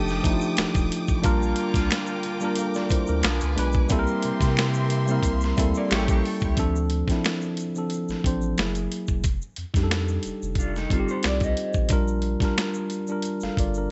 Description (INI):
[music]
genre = R&B, neo-soul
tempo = 90 BPM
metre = 4/4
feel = swing 53% on 16ths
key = unclear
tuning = A4 = 439 Hz
[part]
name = tine electric piano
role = accompaniment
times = 0.0-13.9 s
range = F3 to F5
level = -29 LUFS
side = equal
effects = none
[part]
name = warm studio string section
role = sustained chords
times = 0.0-6.6 s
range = Bb3 to Eb6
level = -36 LUFS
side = equal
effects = none
[part]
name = mellow saxophone section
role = stabs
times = 0.0-6.2 s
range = D3 to G4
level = -35 LUFS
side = equal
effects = none
[part]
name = saturated sub bass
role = bass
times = 0.0-13.9 s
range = Eb1 to C3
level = -29 LUFS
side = equal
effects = none
[part]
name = dusty soul sampler-style drum kit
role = drums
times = 0.1-13.7 s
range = hi-hat, kick drum, snare drum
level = -28 LUFS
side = equal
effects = none
[part]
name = egg shaker and finger snaps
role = percussion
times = 0.1-13.9 s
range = none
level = -40 LUFS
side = equal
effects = none
[part]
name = electric guitar through a small old amp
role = second line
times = 5.8-11.9 s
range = D4 to Eb5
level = -33 LUFS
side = equal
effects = tremolo
[sound]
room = small room ambience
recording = nothing above 7.9 kHz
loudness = -24 LUFS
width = mono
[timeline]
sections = 0.0-6.6 A section; 6.6-13.9 B section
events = none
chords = 0.0 F13; 1.2 Bb6; 3.2 Bdim7; 3.9 C7; 5.9 A7b9; 6.6 Dm7; 8.6 F#9; 9.2 F13; 11.9 Bb6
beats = 0.57 | 1.24 1.91 2.57 3.24 | 3.91 4.57 5.24 5.91 | 6.57 7.24 7.91 8.57 | 9.24 9.91 10.57 11.24 | 11.91 12.57 13.24 13.91